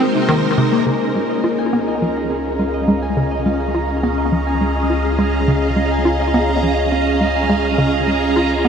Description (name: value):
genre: ambient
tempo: 104 BPM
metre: 4/4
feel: straight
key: unclear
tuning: A4 = 439 Hz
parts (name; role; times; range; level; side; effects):
- phased string machine; sustained chords; 0.0-8.7 s; Ab3 to E#5; -19 LUFS; right 1 dB; ensemble chorus, phaser
- Celtic harp; arpeggios; 0.0-8.7 s; C3 to G#5; -23 LUFS; moving between left 8 dB and right 2 dB; auto-pan, ping-pong delay
- hollow square pluck; riff; 0.0-8.7 s; C3 to E#4; -20 LUFS; equal; chorus, ping-pong delay
- round analog bass; bass; 0.9-8.7 s; C#2; -23 LUFS; right 1 dB; none
- bubbling stepped-filter texture; texture; 0.9-8.7 s; A#5; -26 LUFS; right 5 dB; chorus, built-in reverb
room: wet huge ambient reverb, RT60 8.9 s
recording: none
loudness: -15 LUFS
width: side -7 dB against mid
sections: 0.9-8.7 A section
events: none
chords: 0.0 Ab7; 0.9 C#add9